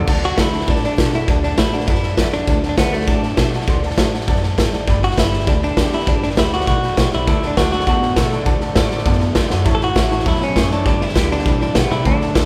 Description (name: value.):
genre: rockabilly.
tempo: 200 BPM.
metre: 4/4.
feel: straight.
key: D major.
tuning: A4 = 439 Hz.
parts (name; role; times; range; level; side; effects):
clear upright piano; accompaniment; 0.0-12.5 s; C#5 to D6; -31 LUFS; equal; none.
picked steel-string acoustic guitar; accompaniment; 0.0-12.5 s; G2 to G4; -31 LUFS; equal; none.
electric guitar through a small old amp; riff; 0.0-0.1, 7.3-12.5 s; G2 to B3; -28 LUFS; equal; none.
upright bass; bass; 0.0-12.5 s; G1 to B2; -25 LUFS; equal; none.
raw garage drum kit; drums; 0.1-12.4 s; crash cymbal, hi-hat, kick drum, snare drum; -20 LUFS; equal; none.
direct-recorded clean electric guitar; melody; 0.3-12.5 s; A3 to A4; -24 LUFS; equal; spring reverb.
room: light reverb.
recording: band playing live in one room.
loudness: -17 LUFS.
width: mono.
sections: 0.1-12.5 A section.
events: upright piano fill 9.2-9.7; drum fill 9.5.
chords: 0.1 D; 4.9 G; 7.3 D; 9.7 A; 10.9 G.